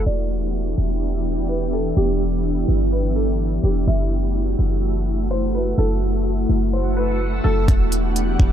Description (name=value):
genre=hip hop, atmospheric cloud-rap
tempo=126 BPM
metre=4/4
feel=half-time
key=E minor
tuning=A4 = 439 Hz
part: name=felt-muted upright piano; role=melody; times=0.0-7.7 s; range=G4 to E5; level=-28 LUFS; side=equal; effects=tape echo
part: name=ethereal airy pad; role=sustained chords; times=0.0-8.5 s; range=E3 to F#5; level=-23 LUFS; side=equal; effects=ensemble chorus, built-in reverb, sidechain pumping
part: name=warm 808-style bass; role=bass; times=0.0-8.5 s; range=E1 to G1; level=-21 LUFS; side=equal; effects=none
part: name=backwards swelling texture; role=texture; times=0.0-8.5 s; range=G4 to E6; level=-37 LUFS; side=left 1 dB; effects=built-in reverb
part: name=trap drum kit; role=drums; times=7.7-8.5 s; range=hi-hat, kick drum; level=-17 LUFS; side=equal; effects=none
room=little or no reverb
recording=low-pass filter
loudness=-18 LUFS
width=side -10 dB against mid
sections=0.1-7.7 A section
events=filter sweep 0.1-7.7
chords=0.1 Em7; 3.9 F#m7; 7.7 Em7